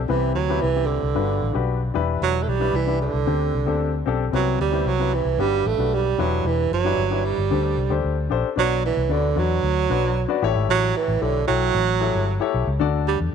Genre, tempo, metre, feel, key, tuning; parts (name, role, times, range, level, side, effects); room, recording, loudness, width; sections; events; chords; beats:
uptempo 1960s-style soul; 113 BPM; 4/4; straight; A4 = 440 Hz
vintage muted fingered electric bass; bass; 0.0-13.3 s; E1 to E2; -24 LUFS; left 1 dB
warm tenor saxophone; melody; 0.1-13.2 s; D3 to A3; -23 LUFS; right 10 dB
warm baby grand piano; accompaniment; 0.1-13.3 s; G2 to G5; -25 LUFS; left 12 dB
light reverb, small room ambience; 1960s-style stereo with parts hard left and right; -19 LUFS; side -7 dB against mid
0.0-8.6 A section; 8.6-13.3 B section
0.1 Cmaj7; 1.2 Gmaj7; 1.9 Em7; 3.3 D7sus4; 4.3 Cmaj7; 5.4 Gmaj7; 6.2 Em7; 7.5 D7sus4; 8.6 Bm; 10.4 A7; 12.8 D
| 0.09 0.62 1.15 1.68 | 2.21 2.74 3.27 3.80 | 4.33 4.86 5.39 5.92 | 6.45 6.98 7.51 8.04 | 8.57 9.10 9.63 10.16 | 10.69 11.22 11.75 12.28 | 12.81 13.33